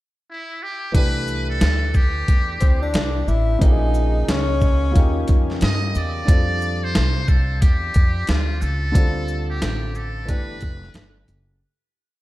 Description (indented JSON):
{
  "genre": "hip hop, jazz-hop",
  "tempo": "90 BPM",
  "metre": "4/4",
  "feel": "swing 64% on 16ths",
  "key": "C major",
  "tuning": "A4 = 440 Hz",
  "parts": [
    { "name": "trumpet with metal mute", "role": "melody", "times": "0.3-11.3 s", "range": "E4 to Eb5", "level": "-27 LUFS", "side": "equal", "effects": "tape echo" },
    { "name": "warm upright piano", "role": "accompaniment", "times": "0.9-11.6 s", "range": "Db3 to B4", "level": "-29 LUFS", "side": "equal", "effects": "none" },
    { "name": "upright bass", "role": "bass", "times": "0.9-11.6 s", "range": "F1 to G2", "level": "-22 LUFS", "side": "equal", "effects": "none" },
    { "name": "boom bap sampler-style drum kit", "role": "drums", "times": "0.9-11.5 s", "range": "hi-hat, kick drum, shaker, snare drum", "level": "-18 LUFS", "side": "equal", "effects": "none" },
    { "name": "breathy tenor saxophone", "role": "second line", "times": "2.6-5.5 s", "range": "C4 to E4", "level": "-25 LUFS", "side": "left 3 dB", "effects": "tape echo" }
  ],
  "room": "light reverb, small room ambience",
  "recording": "none",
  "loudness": "-17 LUFS",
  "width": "side -17 dB against mid",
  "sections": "0.0-0.9 pickup bar; 0.9-11.6 head",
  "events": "fade-out 8.9-11.6",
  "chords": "0.0 N.C.; 0.9 Cmaj9; 3.6 Bbm7; 4.9 Eb9; 6.3 F69; 8.9 Dm7; 10.3 G9",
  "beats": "0.28 | 0.95 1.61 2.28 2.95 | 3.62 4.28 4.95 5.62 | 6.28 6.95 7.62 8.28 | 8.95 9.62 10.28 10.95"
}